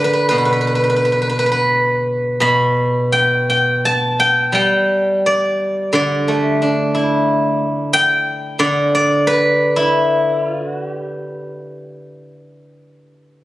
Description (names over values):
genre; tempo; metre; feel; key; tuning
chinese traditional, Chinese solo plucked strings; 88 BPM; 4/4; uneven beats, rubato; G gong mode; A4 = 436 Hz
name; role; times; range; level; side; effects
steel-string zither; solo; 0.0-13.4 s; B2 to B5; -14 LUFS; equal; none
room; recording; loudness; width
moderate concert hall reverb, RT60 2.2 s; recorded on a phone in the room, studio reverb; -14 LUFS; side -16 dB against mid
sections
0.0-13.4 A section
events
none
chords
none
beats
| 0.33 1.01 1.70 2.42 | 3.15 3.85 4.55 5.24 | 5.94 6.62 7.28 7.94 | 8.60 9.27 9.93 10.61 | 11.30 11.99 12.71